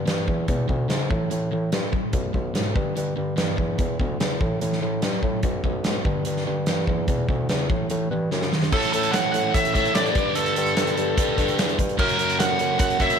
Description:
classic rock; 146 BPM; 4/4; straight; A4 = 441 Hz
sludgy distorted guitar; riff; 0.0-13.2 s; B1 to A4; -26 LUFS; equal; overdrive
mellow bassoon; bass; 0.0-13.2 s; B1 to A2; -28 LUFS; equal
big rock drum kit; drums; 0.1-13.2 s; crash cymbal, hi-hat, kick drum, snare drum; -25 LUFS; equal
nasal lead guitar with a parked wah; melody; 8.7-13.2 s; A4 to F#5; -23 LUFS; equal; overdrive
light reverb, small room ambience; -20 LUFS; side -7 dB against mid
0.0-8.7 A section; 8.7-13.2 B section
drum fill 8.3-8.7
0.5 E; 1.1 A5; 2.1 B5; 2.8 G5; 3.8 E5; 4.4 A5; 5.4 B5; 6.1 G5; 7.1 E5; 7.7 A5; 8.3 F#5; 8.7 A; 10.2 Gsus2; 12.0 F#

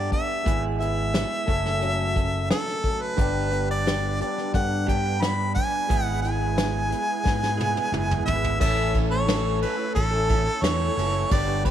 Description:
folk rock and heartland rock; 88 BPM; 4/4; straight; A major; A4 = 440 Hz
clear harmonica; melody; 0.0-11.7 s; A4 to B5; -26 LUFS; equal
bright grand piano; accompaniment; 0.0-11.7 s; G3 to E5; -44 LUFS; right 10 dB
picked old ladder-braced acoustic guitar; accompaniment; 0.0-11.7 s; F#2 to A4; -32 LUFS; left 12 dB
electric guitar through a small old amp; riff; 0.0-11.7 s; F#2 to A4; -31 LUFS; right 12 dB; wide subtle chorus
fingered electric bass; bass; 0.0-11.7 s; F#1 to G#2; -27 LUFS; equal
soft brush drum kit; drums; 0.1-11.7 s; crash cymbal, hi-hat, kick drum, ride cymbal, snare drum, toms; -27 LUFS; equal
musette accordion; sustained chords; 3.2-11.7 s; G3 to C#5; -38 LUFS; right 3 dB
light reverb, studio ambience; 1960s-style stereo with parts hard left and right; -22 LUFS; side -10 dB against mid
0.0-8.6 A section; 8.6-11.7 B section
drum fill 7.3-8.6
0.5 E/G#; 1.5 F#m; 3.2 G; 5.9 E/G#; 8.6 A

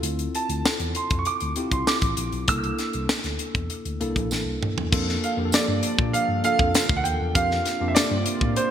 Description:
polished 1980s jazz-funk pop; 98 BPM; 4/4; straight; A4 = 440 Hz
tine electric piano; accompaniment; 0.0-8.7 s; Bb3 to A4; -29 LUFS; left 2 dB; overdrive, lush chorus
mellow tine electric piano; bass; 0.0-8.5 s; A1 to Bb2; -29 LUFS; equal; slow stereo tremolo
tight funk drum kit; drums; 0.0-8.7 s; crash cymbal, hi-hat, kick drum, snare drum, toms; -25 LUFS; left 1 dB
clear grand piano; melody; 0.4-8.7 s; C5 to E6; -26 LUFS; right 4 dB
tambourine; percussion; 0.7-8.1 s; -35 LUFS; right 5 dB
warm analog pad; sustained chords; 4.9-8.7 s; F3 to A4; -34 LUFS; right 3 dB; chorus
moderate lush hall reverb, RT60 1.8 s, small room ambience; bright 1980s-style digital production; -21 LUFS; side -9 dB against mid
0.0-4.9 A section; 4.9-8.7 B section
drum fill 4.3-4.9
0.0 Dm7; 2.5 C13; 4.9 Gm9/F; 7.4 C9sus4/F

